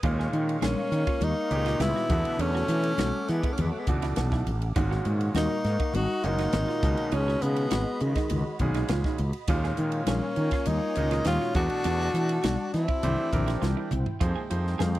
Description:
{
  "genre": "electric jazz fusion",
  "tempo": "102 BPM",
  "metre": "4/4",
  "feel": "straight",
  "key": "unclear",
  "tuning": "A4 = 440 Hz",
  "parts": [
    { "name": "bright grand piano", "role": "accompaniment", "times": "0.0-15.0 s", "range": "A#2 to F5", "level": "-33 LUFS", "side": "right 2 dB", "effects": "none" },
    { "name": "warm analog pad", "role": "sustained chords", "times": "0.0-15.0 s", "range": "Eb3 to D6", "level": "-41 LUFS", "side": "equal", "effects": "chorus" },
    { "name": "clean electric guitar", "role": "stabs", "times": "0.0-15.0 s", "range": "D4 to G#4", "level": "-36 LUFS", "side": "right 11 dB", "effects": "lush chorus" },
    { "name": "fretless electric bass", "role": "bass", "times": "0.0-15.0 s", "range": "F#1 to E3", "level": "-27 LUFS", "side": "equal", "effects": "none" },
    { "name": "crisp fusion drum kit", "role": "drums", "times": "0.0-15.0 s", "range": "hi-hat, kick drum, ride cymbal, snare drum, toms", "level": "-31 LUFS", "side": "equal", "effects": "none" },
    { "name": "congas", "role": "percussion", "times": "0.0-14.9 s", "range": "none", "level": "-34 LUFS", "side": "left 4 dB", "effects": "none" },
    { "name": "clear tenor saxophone", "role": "melody", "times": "0.6-13.9 s", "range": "G#3 to F#4", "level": "-30 LUFS", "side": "equal", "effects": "none" },
    { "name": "warm tenor saxophone", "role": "second line", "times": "0.7-13.9 s", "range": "D#3 to D#4", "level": "-35 LUFS", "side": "left 7 dB", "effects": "none" }
  ],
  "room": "little or no reverb",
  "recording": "dry, close 1970s-style studio recording",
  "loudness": "-24 LUFS",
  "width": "side -15 dB against mid",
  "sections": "0.0-14.2 A section",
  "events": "drum fill 13.6-14.2",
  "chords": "0.0 D#9sus4; 2.1 E9sus4; 4.8 G#9sus4; 6.8 C#9sus4; 9.5 D#9sus4; 11.6 E9sus4; 13.0 C7; 14.2 Fm11",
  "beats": "| 0.04 0.63 1.22 1.81 | 2.40 2.99 3.58 4.17 | 4.76 5.35 5.94 6.53 | 7.12 7.71 8.30 8.90 | 9.49 10.08 10.67 11.26 | 11.85 12.44 13.03 13.62 | 14.21 14.80"
}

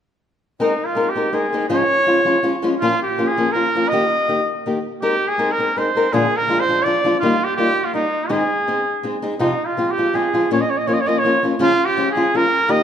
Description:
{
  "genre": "mexican folk, mariachi",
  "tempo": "164 BPM",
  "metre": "3/4",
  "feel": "straight",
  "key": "Ab major",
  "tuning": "A4 = 436 Hz",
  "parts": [
    { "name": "clear trumpet", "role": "melody", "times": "0.6-12.8 s", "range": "Eb4 to Eb5", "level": "-18 LUFS", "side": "right 1 dB", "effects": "none" },
    { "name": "nylon-string guitar", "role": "accompaniment", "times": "0.6-12.8 s", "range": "F2 to Bb4", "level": "-19 LUFS", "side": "left 1 dB", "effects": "none" }
  ],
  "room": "wet recital hall reverb, RT60 1.8 s",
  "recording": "none",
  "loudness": "-16 LUFS",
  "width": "side -8 dB against mid",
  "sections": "0.6-12.8 A section",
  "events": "none",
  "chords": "0.6 Abadd9; 1.7 Db/Ab; 2.8 Bbm; 3.9 Eb; 5.0 Abadd9; 6.1 Bb7; 7.2 Ebadd9; 8.3 Ab; 9.4 Fm; 10.5 Bbm; 11.6 Db",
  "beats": "| 0.60 0.97 1.34 | 1.71 2.07 2.44 | 2.81 3.17 3.54 | 3.91 4.28 4.64 | 5.02 5.39 5.76 | 6.13 6.49 6.85 | 7.21 7.58 7.94 | 8.30 8.67 9.04 | 9.41 9.78 10.15 | 10.52 10.88 11.24 | 11.60 11.97 12.33 | 12.70"
}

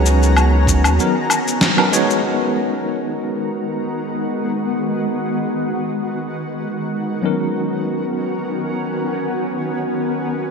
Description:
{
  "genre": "sunset chillout",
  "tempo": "free time",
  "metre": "none",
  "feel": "none",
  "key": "G# minor",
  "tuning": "A4 = 440 Hz",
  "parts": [
    { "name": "nylon-string guitar", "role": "melody", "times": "0.0-1.6 s", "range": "G#4", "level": "-31 LUFS", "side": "right 3 dB", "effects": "none" },
    { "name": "tine electric piano", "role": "accompaniment", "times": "0.0-10.5 s", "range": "F#3 to C#5", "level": "-22 LUFS", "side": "equal", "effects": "medium stereo tremolo, auto-pan, ping-pong delay" },
    { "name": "shimmering ambient pad", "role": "sustained chords", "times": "0.0-10.5 s", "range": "D#3 to A#5", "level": "-21 LUFS", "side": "equal", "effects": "chorus, built-in reverb" },
    { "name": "warm sub bass", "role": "bass", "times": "0.0-1.0 s", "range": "C#2 to D#2", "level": "-14 LUFS", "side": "equal", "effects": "none" },
    { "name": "electronic shaker, woodblock and snare drum", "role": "drums", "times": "0.1-2.2 s", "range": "none", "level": "-19 LUFS", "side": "left 1 dB", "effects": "overdrive, gated reverb" },
    { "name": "electronic kick drum", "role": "drums", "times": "0.7-0.8 s", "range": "none", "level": "-21 LUFS", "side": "equal", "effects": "overdrive" }
  ],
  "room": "wet plate reverb, RT60 3.5 s",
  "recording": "bright 1980s-style digital production",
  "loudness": "-17 LUFS",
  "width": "side -5 dB against mid",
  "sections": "0.0-2.2 A section; 2.2-10.5 B section",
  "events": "break 1.0-2.2; band accent 1.6-1.9",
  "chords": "0.0 C#13sus4; 2.2 G#m9; 7.2 C#13sus4",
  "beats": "free time"
}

